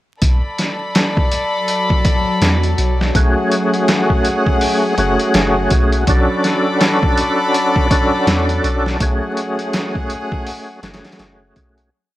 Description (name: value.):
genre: trip hop.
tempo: 82 BPM.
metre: 4/4.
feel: swing 60% on 16ths.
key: B dorian.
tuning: A4 = 441 Hz.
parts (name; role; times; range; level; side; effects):
rich chamber violin section; sustained chords; 0.2-11.9 s; G#4 to D6; -22 LUFS; left 2 dB; none.
soft 808-style bass; bass; 0.2-11.9 s; F#1 to E2; -18 LUFS; equal; none.
trip hop sampler-style drum kit; drums; 0.2-11.9 s; hi-hat, kick drum, snare drum; -17 LUFS; equal; vintage 12-bit sampler grit.
bowed-like drone; texture; 1.3-11.9 s; F#3 to F#4; -25 LUFS; equal; built-in reverb.
overdriven tonewheel organ; accompaniment; 3.1-11.9 s; A3 to A4; -17 LUFS; equal; chorus vibrato, slow rotary speaker, tremolo, vintage 12-bit sampler grit, tape echo.
room: digital ambience.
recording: dry, gritty hardware recording, transformer saturation, vinyl crackle.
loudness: -13 LUFS.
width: side -15 dB against mid.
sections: 0.2-11.9 groove.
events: fade-out 8.0-11.9.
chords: 0.2 Bm7; 3.1 F#madd9/B; 6.1 Bm7; 9.0 F#madd9/B.